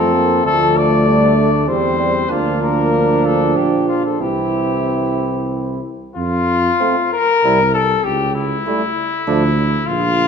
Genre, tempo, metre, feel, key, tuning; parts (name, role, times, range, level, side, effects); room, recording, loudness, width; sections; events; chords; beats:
classical, brass quintet; 91-101 BPM; 3/4; rubato; F major; A4 = 439 Hz
mellow trumpet; melody; 0.0-10.3 s; E4 to D5; -17 LUFS; left 5 dB
warm flugelhorn; second line; 0.0-9.4 s; C4 to F4; -22 LUFS; right 7 dB
clear French horn; accompaniment; 0.0-9.4 s; G3 to D4; -22 LUFS; left 2 dB
warm euphonium; accompaniment; 0.0-9.4 s; E3 to A3; -22 LUFS; right 3 dB
mellow tuba; bass; 0.0-10.3 s; Bb1 to F2; -20 LUFS; right 3 dB
wet recital hall reverb, RT60 1.6 s; minimal, uncompressed stereo recording; -14 LUFS; side -6 dB against mid
0.0-6.2 A section; 6.2-10.3 B section
0.4 Dm; 1.7 C/E; 2.3 Bb/D; 4.2 C; 6.2 F; 7.4 C7; 8.0 A7/C#; 9.3 Dm
| 0.45 1.07 1.67 | 2.30 2.93 3.56 | 4.21 4.86 5.51 | 6.16 6.80 7.44 | 8.05 8.66 9.27 | 9.87